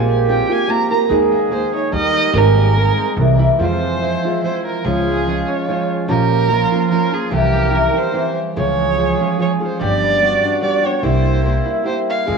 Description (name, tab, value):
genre	mexican folk, mariachi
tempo	146 BPM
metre	3/4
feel	swing 54% on 8ths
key	Ab major, F harmonic minor from 3.6 s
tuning	A4 = 440 Hz
part	dark trumpet	second line	0.0-12.4 s	E4 to Bb4	-25 LUFS	right 5 dB	cassette tape
part	nylon-string guitar	accompaniment	0.0-12.4 s	F2 to Bb4	-22 LUFS	equal	cassette tape
part	concert harp	arpeggios	0.0-12.4 s	E3 to Bb4	-20 LUFS	equal	cassette tape
part	upright bass	bass	0.0-12.4 s	G1 to F2	-18 LUFS	right 1 dB	none
part	warm violin	melody	0.3-12.4 s	G4 to Bb5	-19 LUFS	right 4 dB	cassette tape, tape echo
room	moderate spring reverb, RT60 1.6 s, studio ambience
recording	home recording on cassette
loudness	-14 LUFS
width	side -5 dB against mid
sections	0.0-3.6 A section; 3.6-12.4 B section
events	none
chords	0.0 Bbsus2; 1.1 Ebsus4; 1.9 Eb; 2.3 Abadd9; 3.2 C7; 3.6 Fm; 4.9 Db; 6.1 Bbm; 7.3 C; 8.6 Db; 9.8 G; 11.0 C7